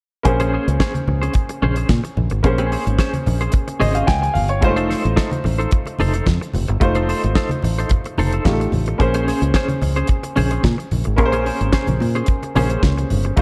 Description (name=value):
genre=disco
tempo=110 BPM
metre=4/4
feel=straight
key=unclear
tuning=A4 = 441 Hz
part: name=clear baby grand piano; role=accompaniment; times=0.2-13.4 s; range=Ab3 to Ab5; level=-25 LUFS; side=equal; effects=none
part: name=semi-hollow electric guitar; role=accompaniment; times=0.3-13.4 s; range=Db4 to C5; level=-27 LUFS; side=equal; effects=tremolo
part: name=fingered electric bass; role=bass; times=0.3-13.4 s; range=F1 to Bb2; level=-22 LUFS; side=equal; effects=none
part: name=damped 70s drum kit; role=drums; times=0.3-13.4 s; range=hi-hat, kick drum, snare drum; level=-23 LUFS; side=equal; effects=none
part: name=congas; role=percussion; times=0.3-13.2 s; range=none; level=-29 LUFS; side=equal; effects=none
room=light reverb, small room ambience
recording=dark, warm production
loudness=-19 LUFS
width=mono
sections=0.3-13.4 A section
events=grand piano fill 3.8-4.6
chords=0.3 Bbm9; 4.6 F7; 9.0 Bbm9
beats=| 0.25 0.80 1.35 1.90 | 2.44 2.99 3.53 4.08 | 4.63 5.17 5.72 6.27 | 6.81 7.36 7.91 8.45 | 9.00 9.55 10.09 10.64 | 11.19 11.73 12.28 12.83 | 13.38